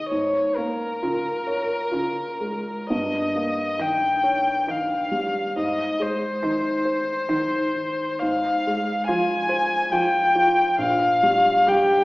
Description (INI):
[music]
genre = classical, slow romantic movement for piano trio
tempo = 59-72 BPM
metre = 3/4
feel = rubato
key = Ab major, F minor from 8.2 s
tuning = A4 = 443 Hz
[part]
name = dark violin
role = melody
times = 0.0-12.0 s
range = Bb4 to Ab5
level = -22 LUFS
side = left 1 dB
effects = none
[part]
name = dark grand piano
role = accompaniment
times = 0.0-12.0 s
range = Bb1 to Db5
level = -25 LUFS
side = equal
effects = none
[part]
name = warm cello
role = second line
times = 1.0-12.0 s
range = Db3 to G3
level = -34 LUFS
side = right 1 dB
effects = none
[sound]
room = wet recital hall reverb, RT60 1.5 s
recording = heard from further back in the room, small speaker sound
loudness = -20 LUFS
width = side -20 dB against mid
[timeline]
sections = 0.0-12.0 A section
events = none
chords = 0.1 Bbm7/Ab; 2.9 Eb7/G; 5.5 Ab; 8.2 Fm/Ab; 10.8 Gm7/Bb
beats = | 0.11 1.03 1.93 | 2.91 3.80 4.67 | 5.55 6.42 7.28 | 8.21 9.07 9.91 | 10.78 11.67